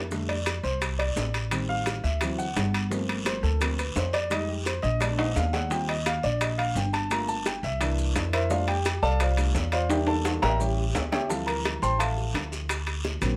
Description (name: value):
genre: Afro-Cuban jazz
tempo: 172 BPM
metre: 4/4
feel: straight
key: F major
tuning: A4 = 443 Hz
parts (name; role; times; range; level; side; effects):
- upright bass; bass; 0.0-13.4 s; G1 to F2; -31 LUFS; equal; none
- dark baby grand piano; accompaniment; 0.1-13.4 s; D3 to C6; -31 LUFS; equal; none
- bongos; percussion; 0.1-13.2 s; none; -38 LUFS; equal; none
- guiro; percussion; 0.1-13.4 s; none; -41 LUFS; equal; none
- maracas; percussion; 0.1-13.4 s; none; -45 LUFS; equal; none
- timbales; percussion; 0.3-13.4 s; none; -34 LUFS; equal; none
room: light reverb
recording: none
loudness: -27 LUFS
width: mono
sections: 0.1-11.3 A section; 11.3-13.4 A section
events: grand piano solo 0.1-13.4; drum fill 5.2-5.7, 9.9-11.3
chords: 0.1 F6; 1.5 Am7b5; 2.2 D7; 2.9 Gm11; 4.3 Fm9; 5.0 Bb7b9; 5.7 Eb69; 7.1 Gm7; 7.8 C7; 8.5 F6; 9.9 Em7b5; 10.6 A7; 11.3 Dm11; 12.7 Daug7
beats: | 0.12 0.47 0.82 1.17 | 1.51 1.86 2.21 2.56 | 2.91 3.26 3.61 3.96 | 4.31 4.66 5.01 5.36 | 5.71 6.06 6.41 6.76 | 7.11 7.46 7.81 8.15 | 8.50 8.85 9.20 9.55 | 9.90 10.25 10.60 10.95 | 11.30 11.65 12.00 12.35 | 12.70 13.05